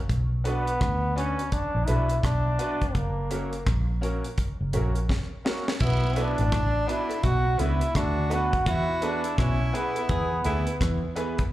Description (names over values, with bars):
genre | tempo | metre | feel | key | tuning
roots reggae | 84 BPM | 4/4 | swing 62% on 16ths | B dorian from 5.8 s | A4 = 440 Hz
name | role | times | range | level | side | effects
vintage muted fingered electric bass | bass | 0.1-11.4 s | F#1 to E2 | -26 LUFS | equal | none
deep reggae drum kit | drums | 0.1-11.5 s | crash cymbal, hi-hat, kick drum, rim click, snare drum | -28 LUFS | equal | none
bright upright piano | stabs | 0.4-11.4 s | A#3 to B4 | -38 LUFS | left 3 dB | slapback echo
clear trombone | melody | 0.5-11.2 s | A#3 to F#4 | -29 LUFS | equal | dub echo, slapback echo
mellow electric guitar | accompaniment | 0.5-11.4 s | B3 to D5 | -37 LUFS | right 4 dB | dub echo, slapback echo
cowbell and jawbone-type rattle | percussion | 0.5-11.4 s | none | -38 LUFS | right 5 dB | none
clear tenor saxophone | second line | 5.8-10.7 s | D4 to G#4 | -33 LUFS | right 2 dB | dub echo, slapback echo
overdriven clav | riff | 5.8-11.0 s | A2 to E3 | -35 LUFS | left 5 dB | phaser, slapback echo
room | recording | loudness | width
small room ambience | live gig heard through the venue's PA, club reverb | -23 LUFS | side -15 dB against mid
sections
0.0-5.8 A section; 5.8-11.5 B section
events
drum fill 5.1-5.8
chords
0.1 Bm; 3.0 F#; 5.8 Bm; 8.7 E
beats
| 0.09 0.81 1.52 2.24 | 2.95 3.66 4.38 5.09 | 5.81 6.52 7.24 7.95 | 8.67 9.38 10.10 10.81